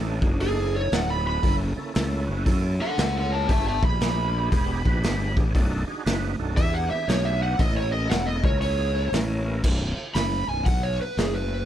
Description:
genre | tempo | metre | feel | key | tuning
blues rock power trio and southern rock | 117 BPM | 4/4 | swing 65% on 8ths | unclear | A4 = 440 Hz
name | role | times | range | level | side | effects
overdriven tonewheel organ | sustained chords | 0.0-9.6 s | A3 to B4 | -33 LUFS | right 5 dB | chorus vibrato, slow rotary speaker
fuzz fingered electric bass | bass | 0.0-11.6 s | B0 to F#2 | -26 LUFS | equal | overdrive
raw garage drum kit | drums | 0.2-11.3 s | crash cymbal, hi-hat, kick drum, snare drum | -26 LUFS | equal | none
overdriven slide guitar | melody | 0.4-11.7 s | G#4 to B5 | -28 LUFS | right 1 dB | none
room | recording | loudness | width
little or no reverb | none | -22 LUFS | side -11 dB against mid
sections
0.0-9.6 A section; 9.6-11.7 A section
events
electric slide guitar solo 0.0-11.7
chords
0.0 B7#9; 1.4 F#7#9; 3.5 E7#9; 5.5 B7#9; 6.6 E7#9; 7.6 F#7#9/E (rootless); 9.6 B5

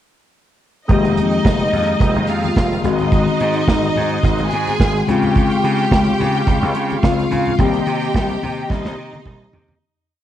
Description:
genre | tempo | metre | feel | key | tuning
disco | 108 BPM | 4/4 | straight | F minor | A4 = 440 Hz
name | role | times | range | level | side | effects
clear studio string section | second line | 0.9-9.8 s | Eb4 to Ab5 | -21 LUFS | right 1 dB | cassette tape, analog delay
mellow tine electric piano | accompaniment | 0.9-9.8 s | Db3 to G4 | -20 LUFS | left 7 dB | medium stereo tremolo, cassette tape
mellow tonewheel organ | sustained chords | 0.9-9.8 s | Ab3 to Eb6 | -25 LUFS | right 2 dB | chorus vibrato, slow rotary speaker, cassette tape
gritty slap bass | bass | 0.9-9.7 s | F1 to Db3 | -22 LUFS | right 1 dB | overdrive
modern studio drum kit | drums | 0.9-9.8 s | hi-hat, kick drum, snare drum, toms | -17 LUFS | right 1 dB | cassette tape
congas | percussion | 0.9-9.8 s | none | -30 LUFS | left 6 dB | none
room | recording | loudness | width
small room ambience | home recording on cassette | -14 LUFS | side -11 dB against mid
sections
0.9-9.8 verse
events
fade-out 7.6-9.8; drum fill 8.7-9.8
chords
0.9 Fm11; 2.8 Ab7; 5.1 Dbmaj7; 7.6 Cm7

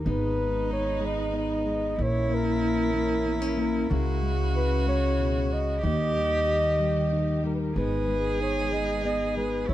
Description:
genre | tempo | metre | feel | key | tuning
acoustic folk-pop ballad | 94 BPM | 3/4 | straight | G# minor | A4 = 437 Hz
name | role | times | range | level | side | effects
mellow flugelhorn | melody | 0.0-9.7 s | A#4 to D#5 | -29 LUFS | equal | none
warm cello | second line | 0.0-9.7 s | D#4 to G#4 | -31 LUFS | right 3 dB | none
fingerpicked plugged-in steel-string acoustic guitar | accompaniment | 0.0-9.7 s | G#2 to G#4 | -30 LUFS | left 3 dB | none
warm chamber string section | sustained chords | 0.0-9.7 s | C#3 to B4 | -39 LUFS | left 1 dB | none
upright bass | bass | 0.0-9.7 s | G#1 to D#2 | -29 LUFS | equal | none
room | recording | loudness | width
light reverb | dark, warm production | -24 LUFS | side -13 dB against mid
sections
0.1-9.7 A section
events
none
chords
0.1 G#m; 2.0 A#dim; 3.9 C#m; 5.8 D#; 7.8 G#m

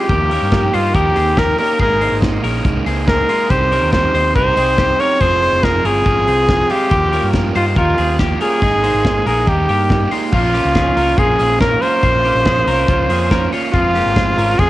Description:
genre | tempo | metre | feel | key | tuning
jangly indie pop | 141 BPM | 4/4 | straight | unclear | A4 = 440 Hz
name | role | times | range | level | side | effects
bright trumpet | melody | 0.0-14.7 s | F4 to Db5 | -16 LUFS | equal | cassette tape, plate reverb
crunchy overdriven guitar | accompaniment | 0.0-14.7 s | Bb2 to Ab4 | -21 LUFS | right 5 dB | cassette tape, plate reverb
twelve-string electric guitar | arpeggios | 0.0-14.7 s | Ab3 to Db5 | -24 LUFS | left 5 dB | cassette tape, plate reverb
hollow-body short-scale fingered electric bass | bass | 0.1-14.7 s | F1 to G2 | -20 LUFS | equal | none
modern studio drum kit | drums | 0.1-14.7 s | crash cymbal, hi-hat, kick drum, snare drum | -20 LUFS | equal | cassette tape
room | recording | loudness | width
light reverb | home recording on cassette | -12 LUFS | side -15 dB against mid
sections
0.0-10.3 A section; 10.3-14.7 B section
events
none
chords
0.1 Ebadd9; 1.8 Absus2; 3.5 Cm; 5.2 Fm; 6.9 Ebadd9; 8.6 Absus2; 9.5 Eb; 10.3 Bbm; 13.7 Fm

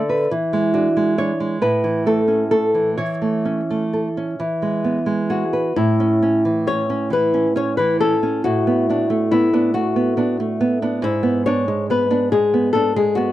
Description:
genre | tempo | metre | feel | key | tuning
romantic duo for nylon-string guitar and classical guitar | 42-48 BPM (dotted quarters) | 6/8 | rubato | A major | A4 = 439 Hz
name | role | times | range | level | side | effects
nylon-string guitar | accompaniment | 0.0-13.3 s | G#2 to D5 | -18 LUFS | right 2 dB | none
flamenco guitar | melody | 5.3-13.3 s | E4 to C#5 | -19 LUFS | left 4 dB | none
room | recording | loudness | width
moderate booth ambience, RT60 0.3 s | dry, close 1970s-style studio recording | -16 LUFS | side -14 dB against mid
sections
0.0-5.8 A section; 5.8-13.3 B section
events
none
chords
0.3 E7; 1.6 A; 3.0 A/E; 4.4 E; 5.8 A; 8.4 Bm7/A; 11.0 G#dim

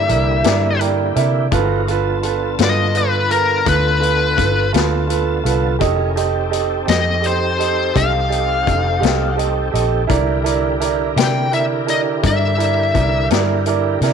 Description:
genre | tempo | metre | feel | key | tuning
slow blues | 56 BPM (dotted quarters) | 12/8 | straight | C mixolydian | A4 = 440 Hz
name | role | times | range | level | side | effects
smooth overdriven lead guitar | melody | 0.0-13.3 s | Bb4 to G5 | -19 LUFS | left 4 dB | slapback echo
overdriven tonewheel organ | sustained chords | 0.0-14.1 s | D3 to A5 | -25 LUFS | left 1 dB | chorus vibrato, slow rotary speaker
vintage muted fingered electric bass | bass | 0.0-14.1 s | F1 to C3 | -20 LUFS | left 1 dB | none
clear upright piano | accompaniment | 0.1-14.1 s | E4 to G5 | -20 LUFS | right 12 dB | none
vintage drum kit | drums | 0.1-14.1 s | hi-hat, kick drum, snare drum | -22 LUFS | left 8 dB | none
room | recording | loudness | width
light reverb, studio ambience | 1960s-style stereo with parts hard left and right | -14 LUFS | side -7 dB against mid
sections
0.0-14.1 A section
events
upright piano fill 0.5-1.5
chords
0.0 C7; 1.5 G7; 5.8 F7; 10.1 C7

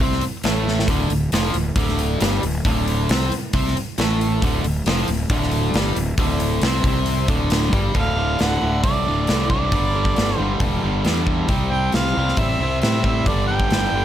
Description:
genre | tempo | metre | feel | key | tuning
blues rock power trio and southern rock | 136 BPM | 4/4 | straight | unclear | A4 = 441 Hz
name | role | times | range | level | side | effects
overdriven electric guitar | riff | 0.0-14.0 s | D2 to C4 | -23 LUFS | equal | none
fuzz fingered electric bass | bass | 0.0-14.0 s | D1 to A2 | -23 LUFS | equal | overdrive
big rock drum kit | drums | 0.1-13.8 s | hi-hat, kick drum, snare drum | -22 LUFS | equal | none
warm harmonica | melody | 8.0-14.0 s | D5 to G5 | -24 LUFS | right 2 dB | overdrive
room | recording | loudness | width
little or no reverb | none | -17 LUFS | side -11 dB against mid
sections
0.0-7.9 A section; 7.9-14.0 B section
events
drum fill 0.7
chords
0.0 D5; 7.9 D; 9.7 G5; 11.5 C; 13.3 G5

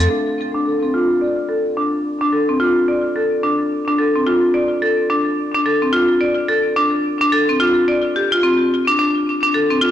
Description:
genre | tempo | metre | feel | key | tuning
downtempo | 108 BPM | 4/4 | swing 60% on 16ths | D minor | A4 = 443 Hz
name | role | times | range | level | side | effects
marimba with hard mallets | arpeggios | 0.0-9.9 s | C4 to D5 | -15 LUFS | equal | low-pass filter, tape echo
room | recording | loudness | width
wet recital hall reverb, RT60 1.5 s | blown-out, overdriven recording, overdrive | -15 LUFS | side -11 dB against mid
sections
0.1-9.9 A section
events
filter sweep on marimba 0.1-9.9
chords
none

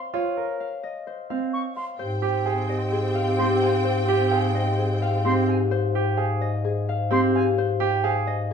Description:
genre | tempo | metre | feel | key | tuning
classical, minimalist pattern music | 129 BPM | 4/4 | straight | Ab major | A4 = 438 Hz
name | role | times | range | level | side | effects
Celtic harp | melody | 0.0-8.5 s | G4 to F5 | -27 LUFS | left 8 dB | none
bright concert grand piano | arpeggios | 0.1-8.3 s | C4 to Bb4 | -26 LUFS | right 8 dB | none
silver concert flute | arpeggios | 1.5-7.4 s | Ab5 to Db6 | -30 LUFS | equal | none
mellow alto flute | second line | 2.0-5.4 s | G4 | -28 LUFS | right 4 dB | none
rich symphonic string section | sustained chords | 2.0-5.4 s | C4 to G5 | -29 LUFS | equal | none
mellow bass clarinet | bass | 2.0-8.5 s | Ab2 | -25 LUFS | left 1 dB | none
room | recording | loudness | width
wet large studio reverb, RT60 0.8 s | heard from further back in the room | -21 LUFS | side -7 dB against mid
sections
0.0-2.0 A section; 2.0-8.5 B section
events
none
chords
0.0 Bbmadd9; 2.0 Abmaj7

